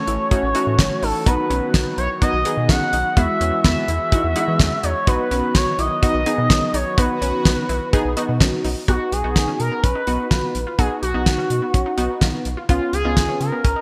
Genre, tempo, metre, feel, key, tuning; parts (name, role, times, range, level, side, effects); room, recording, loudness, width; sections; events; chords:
synth-pop; 126 BPM; 4/4; straight; B major, B lydian from 8.9 s; A4 = 439 Hz
expressive portamento lead; melody; 0.0-13.8 s; E#4 to F#5; -25 LUFS; equal; chorus, digital delay
funky polysynth comp; accompaniment; 0.0-13.6 s; G#3 to G#4; -28 LUFS; equal; chorus
brassy analog pad; sustained chords; 0.0-8.9 s; D#3 to F#4; -32 LUFS; equal; chorus, tremolo
unison pluck; arpeggios; 0.0-13.8 s; B3 to F#4; -33 LUFS; equal
rubbery square bass; bass; 0.1-13.8 s; A1 to E3; -27 LUFS; equal
damped 70s drum kit; drums; 0.1-13.8 s; hi-hat, kick drum, snare drum; -21 LUFS; equal; gated reverb
moderate lush hall reverb, RT60 1.8 s, small room ambience; bright 1980s-style digital production; -19 LUFS; mono
0.0-8.9 A section; 8.9-13.8 B section
0.0 A6; 1.3 B; 3.2 Eadd9; 5.1 B; 12.7 C#7